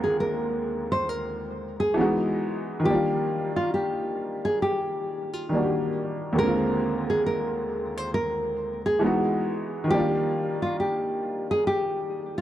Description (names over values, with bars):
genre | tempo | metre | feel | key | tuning
lo-fi hip hop | 68 BPM | 4/4 | swing 61% on 16ths | Eb major | A4 = 442 Hz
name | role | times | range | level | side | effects
nylon-string guitar | melody | 0.0-12.4 s | F4 to C5 | -26 LUFS | equal | analog delay
clear upright piano | accompaniment | 0.0-12.4 s | Eb2 to G4 | -27 LUFS | equal | none
room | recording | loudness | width
moderate plate reverb, RT60 3.1 s | dark, warm production | -24 LUFS | side -12 dB against mid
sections
0.0-12.4 A section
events
none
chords
0.0 Bb7/Eb; 2.0 Emaj9; 2.8 Ebmaj9; 6.4 Bb7/Eb; 9.0 Emaj9; 9.9 Ebmaj9